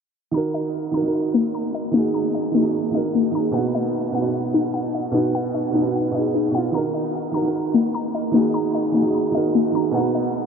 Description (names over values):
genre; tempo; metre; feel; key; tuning
hip hop; 150 BPM; 4/4; half-time; Eb minor; A4 = 440 Hz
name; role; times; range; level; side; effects
felt-muted upright piano; accompaniment; 0.3-10.5 s; B2 to Bb4; -21 LUFS; right 3 dB; none
warbly dusty pluck; arpeggios; 0.3-10.5 s; Bb3 to Bb5; -22 LUFS; left 4 dB; chorus, ping-pong delay
room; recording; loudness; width
wet huge ambient reverb, RT60 8.3 s; dreamy mix soaked in reverb, low-pass filter; -19 LUFS; side -6 dB against mid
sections
0.3-10.5 A section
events
filter sweep 0.3-10.5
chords
0.3 Ebm; 3.5 B; 6.7 Ebm; 9.9 B